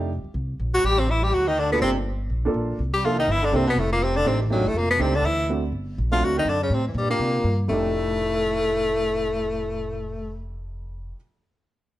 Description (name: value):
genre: jazz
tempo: 246 BPM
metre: 4/4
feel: swing 57% on 8ths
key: F mixolydian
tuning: A4 = 440 Hz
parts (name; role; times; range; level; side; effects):
- warm baby grand piano; accompaniment; 0.0-11.2 s; F2 to A4; -28 LUFS; right 3 dB; none
- upright bass; bass; 0.0-11.1 s; F1 to C3; -26 LUFS; equal; none
- bright tenor saxophone; melody; 0.7-10.4 s; Eb3 to G4; -23 LUFS; left 2 dB; plate reverb
- warm baritone saxophone; second line; 0.7-10.4 s; Eb2 to G3; -28 LUFS; right 1 dB; none
room: light reverb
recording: none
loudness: -20 LUFS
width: side -14 dB against mid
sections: 0.0-5.7 A section; 5.7-7.7 B section; 7.7-9.6 C section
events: none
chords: 0.0 F13; 0.8 Am7; 1.3 D5; 1.8 Gm7; 2.8 C13; 3.8 F13; 5.2 D7; 5.7 Gm; 6.2 D7; 6.7 C13/E; 7.2 C7sus4; 7.7 F13